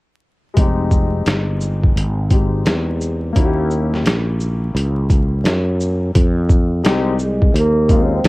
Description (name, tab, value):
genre	hip hop, jazz-hop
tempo	86 BPM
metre	4/4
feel	swing 62% on 16ths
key	F minor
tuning	A4 = 435 Hz
part	dark concert grand piano	accompaniment	0.5-8.2 s	Ab3 to G4	-24 LUFS	left 4 dB	cassette tape
part	sustaining fretless electric bass	bass	0.6-8.3 s	F1 to Gb2	-18 LUFS	equal	none
part	boom bap sampler-style drum kit	drums	0.6-8.3 s	hi-hat, kick drum, shaker, snare drum	-16 LUFS	equal	none
part	breathy trombone	melody	7.2-8.3 s	Ab3 to Db4	-17 LUFS	right 1 dB	none
room	digital ambience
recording	home recording on cassette, vinyl crackle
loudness	-14 LUFS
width	side -21 dB against mid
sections	0.6-6.2 A section; 6.2-8.3 B section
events	none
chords	0.6 Fm9; 3.4 Eb7b9; 6.2 Fm9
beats	| 0.57 1.27 1.97 2.66 | 3.36 4.06 4.76 5.45 | 6.15 6.85 7.55 8.24